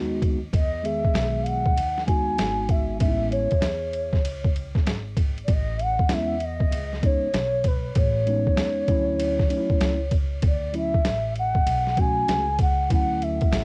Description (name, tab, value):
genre	hip hop, jazz-hop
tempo	97 BPM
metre	4/4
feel	swing 64% on 16ths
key	unclear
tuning	A4 = 441 Hz
part	mellow bansuri	melody	0.0-13.6 s	B4 to G#5	-28 LUFS	equal	cassette tape, analog delay
part	mellow tine electric piano	accompaniment	0.0-13.6 s	D#3 to G#4	-31 LUFS	equal	cassette tape
part	upright bass	bass	0.0-13.6 s	G#1 to E2	-32 LUFS	equal	none
part	boom bap sampler-style drum kit	drums	0.2-13.6 s	hi-hat, kick drum, ride cymbal, snare drum	-26 LUFS	equal	none
room	light reverb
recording	home recording on cassette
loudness	-24 LUFS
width	mono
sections	0.0-13.6 A section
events	none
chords	0.0 Emaj9; 3.0 Amaj9; 8.9 Dmaj9